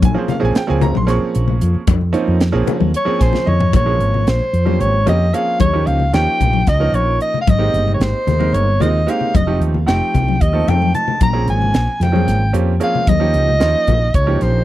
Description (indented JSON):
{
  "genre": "electric jazz fusion",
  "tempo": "225 BPM (eighths)",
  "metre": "7/8",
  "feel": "straight",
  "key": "Bb dorian",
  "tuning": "A4 = 440 Hz",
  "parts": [
    { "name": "woody fretless electric bass", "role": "bass", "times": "0.0-14.6 s", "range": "F1 to F2", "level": "-16 LUFS", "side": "equal", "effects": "ensemble chorus" },
    { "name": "crisp fusion drum kit", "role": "drums", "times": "0.0-14.5 s", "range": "hi-hat, kick drum, snare drum, toms", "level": "-18 LUFS", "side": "equal", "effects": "none" },
    { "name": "congas", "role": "percussion", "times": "0.0-14.0 s", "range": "none", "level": "-22 LUFS", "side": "left 9 dB", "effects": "none" },
    { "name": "bright baby grand piano", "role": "accompaniment", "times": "0.1-14.6 s", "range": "F3 to Db6", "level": "-21 LUFS", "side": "right 4 dB", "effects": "none" },
    { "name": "mellow soprano saxophone", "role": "melody", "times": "3.0-14.6 s", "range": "C5 to Bb5", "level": "-18 LUFS", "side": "equal", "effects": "none" }
  ],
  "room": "little or no reverb",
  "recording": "dry, close 1970s-style studio recording",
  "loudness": "-13 LUFS",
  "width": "side -14 dB against mid",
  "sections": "0.0-3.7 A section; 3.7-14.6 B section",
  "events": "grand piano fill 2.9-3.7; drum fill 3.3-3.7, 10.8-11.2",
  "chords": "0.0 Bbm9; 5.6 Eb9; 7.5 Abmaj9; 9.3 F9; 11.2 Bbm9; 13.1 Eb9"
}